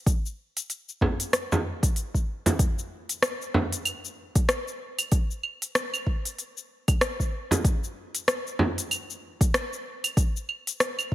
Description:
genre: downtempo.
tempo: 95 BPM.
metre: 4/4.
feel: swing 58% on 16ths.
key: none.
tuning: none.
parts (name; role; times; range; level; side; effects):
electronic kick drum; drums; 0.1-11.1 s; none; -24 LUFS; equal; overdrive.
organic electronic drum kit; drums; 0.1-11.1 s; cabasa, claves, hi-hat, rim click; -27 LUFS; left 1 dB; none.
frame drum; percussion; 1.0-3.7, 7.5-8.7 s; none; -26 LUFS; right 1 dB; none.
room: light reverb, digital ambience.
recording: none.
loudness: -25 LUFS.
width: side -14 dB against mid.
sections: 0.0-2.6 A section; 2.6-11.1 B section.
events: none.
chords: none.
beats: | 0.07 0.70 1.33 1.96 | 2.59 3.23 3.86 4.49 | 5.12 5.75 6.38 7.01 | 7.65 8.28 8.91 9.54 | 10.17 10.80.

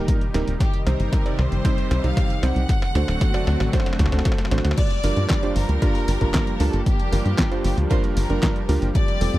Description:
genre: italo disco.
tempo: 115 BPM.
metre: 4/4.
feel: straight.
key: G minor from 4.8 s.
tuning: A4 = 440 Hz.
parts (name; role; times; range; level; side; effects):
clear studio violin section; melody; 0.0-9.4 s; G4 to F#5; -31 LUFS; equal; tape echo.
warm analog pad; sustained chords; 0.0-9.4 s; Bb2 to G4; -29 LUFS; left 1 dB; chorus.
clear electric grand piano; stabs; 0.0-9.4 s; G2 to D5; -28 LUFS; right 4 dB; low-pass filter.
tight sequencer bass; bass; 0.0-9.4 s; D1 to G2; -21 LUFS; equal; none.
detuned 8-bit digital drum machine; drums; 0.1-9.4 s; crash cymbal, handclaps, hi-hat, snare drum; -28 LUFS; equal; overdrive, high-pass filter on hats, high-pass filter on snare, high-pass filter on cymbals, high-pass filter on room.
electronic kick drum; drums; 0.1-9.1 s; none; -21 LUFS; equal; none.
room: little or no reverb.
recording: dry, close 1970s-style studio recording.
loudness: -18 LUFS.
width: side -16 dB against mid.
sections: 0.0-4.8 A section; 4.8-9.4 B section.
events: drum fill 0.0-4.8.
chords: 0.0 Eb; 0.6 Cm; 2.7 D7; 4.8 Gm7.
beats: 0.08 | 0.60 1.12 1.65 2.17 | 2.69 3.21 3.73 4.25 | 4.78 5.30 5.82 6.34 | 6.86 7.39 7.91 8.43 | 8.95.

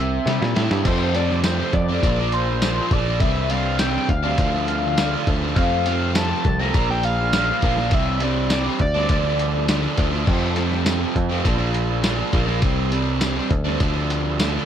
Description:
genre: indie rock.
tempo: 102 BPM.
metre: 4/4.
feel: straight.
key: F major.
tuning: A4 = 440 Hz.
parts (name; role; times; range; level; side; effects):
overdriven synth lead; melody; 0.0-9.9 s; C5 to Bb5; -25 LUFS; left 1 dB; distortion, chorus, phaser, slapback echo.
raw garage guitar; riff; 0.0-14.7 s; F2 to E4; -23 LUFS; right 2 dB; overdrive.
picked electric bass; bass; 0.0-14.6 s; Bb1 to C3; -23 LUFS; equal; none.
lo-fi sampler-style drum kit; drums; 0.3-14.5 s; crash cymbal, hi-hat, kick drum, snare drum, tambourine; -23 LUFS; equal; none.
room: little or no reverb.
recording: none.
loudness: -18 LUFS.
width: side -9 dB against mid.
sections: 0.8-14.7 A section.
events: drum fill 0.3-0.8.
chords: 0.0 C7; 0.8 F; 2.0 Bbadd9; 3.2 Csus2; 4.4 Dm; 5.6 F; 6.7 Bb; 7.9 Csus2; 9.1 Dm; 10.3 F; 11.5 Bb; 12.6 Csus2; 13.8 Dm.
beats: 0.26 | 0.85 1.44 2.03 2.62 | 3.21 3.80 4.39 4.98 | 5.57 6.16 6.75 7.33 | 7.92 8.51 9.10 9.69 | 10.28 10.87 11.46 12.05 | 12.63 13.22 13.81 14.40.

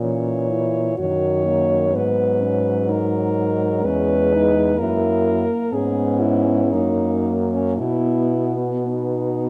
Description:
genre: classical, lyrical piece for horn quartet.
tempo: 48-64 BPM.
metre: 3/4.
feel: rubato.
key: unclear.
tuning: A4 = 440 Hz.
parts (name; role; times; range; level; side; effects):
clear French horn; melody; 0.0-9.5 s; C#4 to C#5; -24 LUFS; equal; none.
mellow French horn; second line; 0.0-9.5 s; G#3 to F#4; -27 LUFS; equal; none.
mellow French horn; accompaniment; 0.0-9.5 s; D#3 to E4; -27 LUFS; equal; none.
warm French horn; bass; 0.0-9.5 s; E2 to B2; -26 LUFS; equal; none.
room: moderate recital hall reverb, RT60 1.6 s.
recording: dark, warm production.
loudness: -20 LUFS.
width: mono.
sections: 0.0-9.5 A section.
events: none.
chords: 0.0 A#dim; 1.0 D#m/F#; 1.9 G#m7; 3.9 C#m/E; 4.8 F#7; 5.7 G#m; 6.7 F#; 7.8 B.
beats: 0.01 1.00 | 1.95 2.91 3.85 | 4.80 5.74 6.74 | 7.80 8.88.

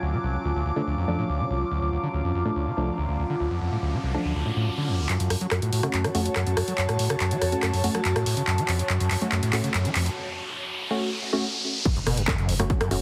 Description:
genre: driving peak-time techno.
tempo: 142 BPM.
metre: 4/4.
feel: straight.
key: F# harmonic minor.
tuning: A4 = 439 Hz.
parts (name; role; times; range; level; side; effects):
overdriven acid bass; riff; 0.0-13.0 s; B#1 to F#3; -29 LUFS; equal; distortion, cassette tape, sidechain pumping, tape echo.
overtone-sweeping drone; drone; 0.0-5.1, 12.8-13.0 s; F#3 to C#4; -39 LUFS; equal; chorus, built-in reverb, phaser, sidechain pumping.
airy breathy pad; texture; 0.0-10.2 s; F4 to D6; -33 LUFS; equal; chorus, phaser, sidechain pumping.
wavetable chord stab; stabs; 0.8-13.0 s; F3 to F#4; -32 LUFS; equal; sidechain pumping, tape echo.
riser and impact; sound effects; 2.7-13.0 s; none; -37 LUFS; equal; none.
techno drum kit; drums; 5.1-13.0 s; crash cymbal, handclaps, hi-hat, rim click; -30 LUFS; equal; overdrive, high-pass filter on snare, studio reverb, sidechain pumping on hats, high-pass filter on hats, sidechain pumping on cymbals, high-pass filter on cymbals.
electronic kick drum; drums; 11.9-12.8 s; none; -28 LUFS; equal; overdrive, studio reverb.
saturated sub bass; bass; 12.0-13.0 s; F#1; -32 LUFS; equal; overdrive, sidechain pumping, low-pass filter.
room: moderate plate reverb, RT60 1.8 s, digital ambience.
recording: heavily compressed radio sound.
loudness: -26 LUFS.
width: mono.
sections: 0.0-5.1 A section; 5.1-11.9 B section; 11.9-13.0 C section.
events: filter sweep on synth stab 0.0-5.1; riser 2.7-5.1, 5.1-11.9; build-up 5.1-11.9; drum fill 5.1-10.2; filter sweep on acid bass 5.1-11.9; break 10.2-11.9; drop 11.9-13.0; impact 11.9-13.0.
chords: 0.0 Dm; 5.1 F#m.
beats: | 0.02 0.45 0.87 1.29 | 1.71 2.14 2.56 2.98 | 3.40 3.83 4.25 4.67 | 5.09 5.52 5.94 6.36 | 6.78 7.21 7.63 8.05 | 8.47 8.90 9.32 9.74 | 10.16 10.59 11.01 11.43 | 11.85 12.28 12.70.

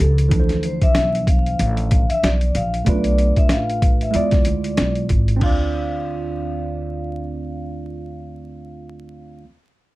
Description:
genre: hip hop, jazz-hop.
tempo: 94 BPM.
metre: 4/4.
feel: swing 57% on 16ths.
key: D dorian.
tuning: A4 = 440 Hz.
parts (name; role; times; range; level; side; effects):
vibraphone with soft mallets; melody; 0.0-9.4 s; A4 to F5; -25 LUFS; left 2 dB; low-pass filter, slapback echo.
mellow tine electric piano; accompaniment; 0.0-9.5 s; E3 to D5; -26 LUFS; right 4 dB; phaser, low-pass filter.
upright bass; bass; 0.0-9.4 s; G#1 to E2; -22 LUFS; equal; none.
boom bap sampler-style drum kit; drums; 0.2-5.6 s; crash cymbal, hi-hat, kick drum, snare drum; -18 LUFS; equal; none.
room: light reverb.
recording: dark, warm production, vinyl crackle.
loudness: -16 LUFS.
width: side -18 dB against mid.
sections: 0.3-5.4 A section; 5.4-8.0 B section.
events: none.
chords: 0.3 Dm9; 2.9 Bm7b5; 4.1 E7b9; 5.4 Dm7.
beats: | 0.31 0.95 1.59 2.23 | 2.86 3.50 4.14 4.78 | 5.42 6.06 6.69 7.33.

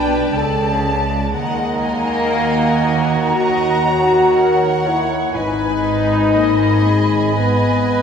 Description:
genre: cinematic.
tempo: 60 BPM.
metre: 4/4.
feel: rubato.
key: unclear.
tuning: A4 = 441 Hz.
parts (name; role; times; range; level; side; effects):
dark studio violin section; melody; 0.0-8.0 s; F#5 to A#5; -25 LUFS; left 3 dB; none.
bright flute section; second line; 0.0-8.0 s; A5 to B5; -24 LUFS; right 2 dB; none.
mellow clarinet; second line; 0.0-8.0 s; D#5 to G5; -26 LUFS; right 3 dB; none.
rich studio violin section; second line; 0.0-8.0 s; B4 to D#5; -28 LUFS; left 3 dB; none.
warm studio viola section; accompaniment; 0.0-8.0 s; G#3 to C#5; -25 LUFS; right 1 dB; none.
mellow French horn section; sustained chords; 0.0-8.0 s; A#3 to F#4; -17 LUFS; left 2 dB; none.
dark studio cello section; bass; 0.0-8.0 s; G#2 to D#3; -24 LUFS; right 2 dB; none.
dark studio double bass section; bass; 0.0-8.0 s; G#1 to D#2; -23 LUFS; right 3 dB; none.
room: wet scoring stage reverb, RT60 1.9 s.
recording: heard from further back in the room.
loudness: -14 LUFS.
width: side -7 dB against mid.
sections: 0.0-8.0 A section.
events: none.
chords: 0.0 Gadd9/B; 1.3 D#m; 5.3 G#m.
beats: 0.35 | 1.34 2.32 3.36 4.36 | 5.35 6.34 7.34.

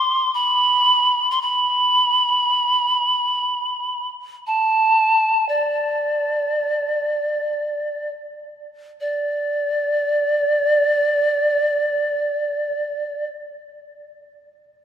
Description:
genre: caucasian folk.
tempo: free time.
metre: none.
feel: none.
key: unclear.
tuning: A4 = 440 Hz.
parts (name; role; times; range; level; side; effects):
polished pan flute; solo; 0.0-13.3 s; D5 to C6; -17 LUFS; right 1 dB; none.
room: moderate cathedral reverb, RT60 4.4 s.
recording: minimal, uncompressed stereo recording.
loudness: -17 LUFS.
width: side -9 dB against mid.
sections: 0.0-9.0 A section; 9.0-14.0 B section.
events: slowing down 0.0-9.0.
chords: none.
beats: free time.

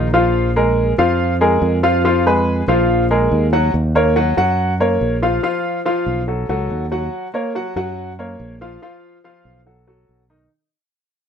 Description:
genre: Afro-Cuban jazz.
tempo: 142 BPM.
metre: 4/4.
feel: straight.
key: Bb minor.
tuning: A4 = 440 Hz.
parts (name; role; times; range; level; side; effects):
clear upright piano; accompaniment; 0.0-10.5 s; D#3 to Gb5; -17 LUFS; left 1 dB; none.
fingered electric bass; bass; 0.0-10.5 s; Bb1 to Gb2; -19 LUFS; right 1 dB; none.
room: light reverb.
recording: none.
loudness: -15 LUFS.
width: side -7 dB against mid.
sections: 0.0-3.7 A section; 3.7-10.5 B section.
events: fade-out 3.7-10.5.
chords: 0.4 Bb5; 2.0 Fdim; 2.9 Bb5; 3.7 Ebm7; 4.6 Gb; 5.4 N.C.; 6.3 B7; 7.1 Gb; 8.8 N.C.; 9.7 B7.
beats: | 0.35 0.78 1.20 1.62 | 2.05 2.47 2.89 3.32 | 3.74 4.16 4.58 5.01 | 5.43 5.86 6.28 6.70 | 7.12 7.55 7.97 8.39 | 8.82 9.24 9.66 10.09.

